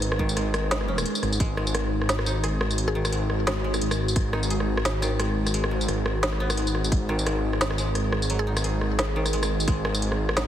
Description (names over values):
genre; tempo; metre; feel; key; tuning
half-time drum and bass; 174 BPM; 4/4; swing 56% on 16ths, half-time; G# minor; A4 = 442 Hz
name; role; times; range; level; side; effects
dark analog pad; sustained chords; 0.0-10.5 s; G#3 to B4; -32 LUFS; equal; chorus, phaser, sidechain pumping
koto; arpeggios; 0.0-10.5 s; D#3 to G#4; -34 LUFS; equal; digital delay
dark detuned saw bass; bass; 0.0-10.5 s; G#1; -26 LUFS; equal; none
organic electronic drum kit; drums; 0.0-10.4 s; hi-hat, rim click, snare drum, tambourine; -27 LUFS; equal; none
electronic kick drum; drums; 0.2-1.5, 4.2, 6.9-7.0, 9.7-9.8 s; none; -24 LUFS; equal; none
mallet-like synth pluck; melody; 2.9-3.2, 8.4-8.7 s; G#4; -37 LUFS; left 2 dB; none
room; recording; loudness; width
light reverb, digital ambience; heavily compressed radio sound; -22 LUFS; side -10 dB against mid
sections
0.0-10.5 A section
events
none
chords
0.0 G#5